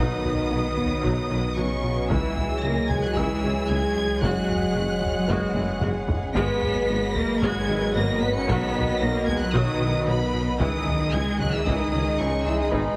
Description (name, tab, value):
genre	cinematic, hybrid orchestral and electronic film score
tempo	113 BPM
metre	4/4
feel	straight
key	unclear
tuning	A4 = 436 Hz
part	rich studio violin section	melody	0.0-13.0 s	B5 to C#7	-35 LUFS	equal	none
part	warm symphonic violin section	second line	0.0-13.0 s	G#4 to G#5	-37 LUFS	equal	none
part	rich chamber viola section	accompaniment	0.0-13.0 s	D#3 to F#4	-36 LUFS	equal	none
part	mellow French horn section	sustained chords	0.0-13.0 s	B3 to C#5	-34 LUFS	equal	none
part	mellow trombone section	sustained chords	0.0-13.0 s	C#3 to D#4	-34 LUFS	equal	none
part	warm analog pad	sustained chords	0.0-13.0 s	D#3 to D#5	-35 LUFS	equal	chorus
part	rubbery square bass	riff	0.0-12.9 s	C#2 to B3	-34 LUFS	equal	none
part	mellow tuba	bass	0.0-12.8 s	F#1 to C#2	-35 LUFS	equal	none
part	pure sine sub bass	bass	0.0-13.0 s	F#1 to C#2	-36 LUFS	equal	none
part	rich chamber double bass section	bass	0.0-12.8 s	F#1 to C#2	-35 LUFS	equal	none
part	rich symphonic cello section	bass	0.0-13.0 s	B2 to C#4	-32 LUFS	equal	none
part	dark baby grand piano	texture	0.0-13.0 s	G#3 to A#6	-38 LUFS	equal	none
part	taiko ensemble	drums	0.2-13.0 s	none	-34 LUFS	equal	none
room	wet scoring stage reverb, RT60 2.0 s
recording	heavily compressed radio sound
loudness	-24 LUFS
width	mono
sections	0.0-13.0 A section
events	drum fill 5.6-6.4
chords	0.0 B; 2.1 C#m; 4.2 F#sus2; 6.4 G#m7; 8.5 B; 10.6 C#madd9